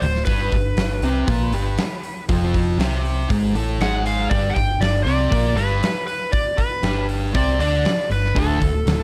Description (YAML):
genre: blues rock power trio and southern rock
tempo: 119 BPM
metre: 4/4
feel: straight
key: unclear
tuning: A4 = 441 Hz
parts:
  - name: overdriven slide guitar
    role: melody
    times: 0.0-9.0 s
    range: A4 to G5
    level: -26 LUFS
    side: equal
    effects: plate reverb
  - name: thick fuzz guitar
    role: riff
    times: 0.0-9.0 s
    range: D2 to D4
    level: -25 LUFS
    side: equal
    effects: distortion
  - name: vintage muted fingered electric bass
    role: bass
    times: 0.0-9.0 s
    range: D1 to D2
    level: -25 LUFS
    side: equal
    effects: none
  - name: big rock drum kit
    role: drums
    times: 0.0-9.0 s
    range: hi-hat, kick drum, snare drum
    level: -26 LUFS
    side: equal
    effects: none
room: light reverb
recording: none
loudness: -20 LUFS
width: mono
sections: 0.0-9.0 A section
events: none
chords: 0.3 G; 2.3 Fm; 4.3 G; 8.4 D5